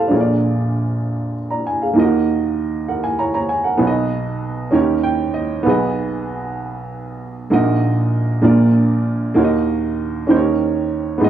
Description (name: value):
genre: gospel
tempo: 65 BPM (dotted quarters)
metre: 6/8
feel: straight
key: Eb minor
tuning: A4 = 439 Hz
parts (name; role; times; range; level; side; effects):
- dark upright piano; solo; 0.0-11.3 s; F1 to Bb5; -16 LUFS; right 2 dB; cassette tape
room: wet booth ambience, RT60 0.2 s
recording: home recording on cassette, small room ambience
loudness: -15 LUFS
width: side -10 dB against mid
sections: 0.0-2.0 A section; 2.0-11.3 B section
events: upright piano fill 4.7-5.7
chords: 0.1 Bb7; 2.0 Ebm; 3.8 B; 4.7 Eb7; 5.7 Abm/Cb; 7.5 Ebm/Bb; 8.4 Bb; 9.4 Ebm; 10.3 Eb7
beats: | 0.12 1.04 | 1.97 2.89 | 3.82 4.74 | 5.66 6.59 | 7.51 8.44 | 9.36 10.29 | 11.21